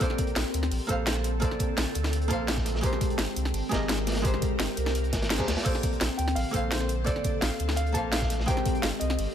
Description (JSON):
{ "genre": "liquid drum and bass", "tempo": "170 BPM", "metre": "4/4", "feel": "straight", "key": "Bb major", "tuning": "A4 = 437 Hz", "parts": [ { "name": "archtop guitar, miked and amplified", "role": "accompaniment", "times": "0.0-9.3 s", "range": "Ab3 to F5", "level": "-32 LUFS", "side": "equal", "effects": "tape echo" }, { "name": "ethereal airy pad", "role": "sustained chords", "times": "0.0-9.3 s", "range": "D3 to Bb4", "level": "-34 LUFS", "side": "left 2 dB", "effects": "ensemble chorus, built-in reverb, phaser, sidechain pumping" }, { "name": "crunchy breakbeat drum kit", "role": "drums", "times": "0.0-9.3 s", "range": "hi-hat, snare drum", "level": "-36 LUFS", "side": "equal", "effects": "high-pass filter on hats, studio reverb, high-pass filter on snare, high-pass filter on room" }, { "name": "electronic kick drum", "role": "drums", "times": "0.0-8.7 s", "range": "none", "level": "-30 LUFS", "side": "equal", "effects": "studio reverb" }, { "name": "garage drum kit", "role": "drums", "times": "0.0-9.3 s", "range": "crash cymbal, hi-hat, snare drum", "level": "-32 LUFS", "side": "equal", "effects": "studio reverb" }, { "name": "warm sub bass", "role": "bass", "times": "0.4-9.3 s", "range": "Ab1 to Eb2", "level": "-30 LUFS", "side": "equal", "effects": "none" }, { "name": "reverse cymbal", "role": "sound effects", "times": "5.1-5.7 s", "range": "none", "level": "-38 LUFS", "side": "right 1 dB", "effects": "none" }, { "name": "dark concert grand piano", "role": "melody", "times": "6.2-9.3 s", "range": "C5 to A5", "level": "-33 LUFS", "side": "right 1 dB", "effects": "vintage 12-bit sampler grit, digital delay" } ], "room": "small room ambience", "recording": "none", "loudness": "-25 LUFS", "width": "side -9 dB against mid", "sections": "0.0-9.3 A section", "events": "reverse cymbal 5.1-5.7", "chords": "0.0 Bbmaj9; 2.8 Abmaj9; 5.7 Bbmaj9; 8.5 Abmaj9", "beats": "| 0.01 0.36 0.72 1.07 | 1.42 1.78 2.13 2.48 | 2.83 3.19 3.54 3.89 | 4.25 4.60 4.95 5.31 | 5.66 6.01 6.36 6.72 | 7.07 7.42 7.78 8.13 | 8.48 8.84 9.19" }